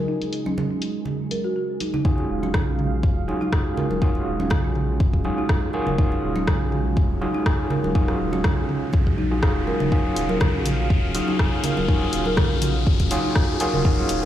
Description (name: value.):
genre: afro house.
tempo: 122 BPM.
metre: 4/4.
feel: swing 54% on 16ths.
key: Eb minor.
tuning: A4 = 440 Hz.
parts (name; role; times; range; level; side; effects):
warm analog pad; sustained chords; 0.0-14.3 s; Db3 to F5; -31 LUFS; equal; chorus, sidechain pumping.
folk marimba with soft mallets; arpeggios; 0.0-14.3 s; Db4 to Bb4; -28 LUFS; equal; sidechain pumping, dub echo.
overdriven tine electric piano; stabs; 0.0-14.3 s; Db4 to Ab4; -28 LUFS; right 1 dB; medium tremolo, sidechain pumping, low-pass filter, dub echo.
afro-pop drum kit; drums; 0.2-14.2 s; hi-hat, rim click, toms; -29 LUFS; equal; low-pass filter on hats, low-pass filter on snare, low-pass filter on toms.
congas; percussion; 0.2-14.1 s; none; -29 LUFS; right 2 dB; none.
electronic kick drum; drums; 2.0-14.0 s; none; -20 LUFS; equal; none.
riser; sound effects; 5.1-14.3 s; none; -34 LUFS; left 4 dB; none.
warm sub bass; bass; 2.3-14.3 s; Eb1 to Bb1; -29 LUFS; equal; sidechain pumping.
room: moderate plate reverb, RT60 1.8 s.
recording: played on a big sound system in a bare room, large studio reverb.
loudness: -19 LUFS.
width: side -12 dB against mid.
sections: 0.0-2.1 A section; 2.1-14.3 B section.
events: build-up 2.1-14.3; riser 5.1-14.3.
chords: 0.0 Ebm11.